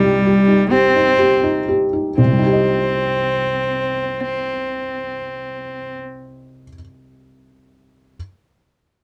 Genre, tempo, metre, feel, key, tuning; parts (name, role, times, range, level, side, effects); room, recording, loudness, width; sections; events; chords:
neoclassical piano and strings; 40 BPM (dotted quarters); 6/8; rubato; C minor; A4 = 440 Hz
warm cello; second line; 0.0-5.9 s; G3 to C4; -20 LUFS; equal
felt-muted upright piano; accompaniment; 0.0-8.2 s; C2 to Eb5; -20 LUFS; equal
light reverb; dark, warm production; -17 LUFS; mono
0.0-2.2 A section; 2.2-5.2 B section
slowing down 0.0-2.2
0.0 Cm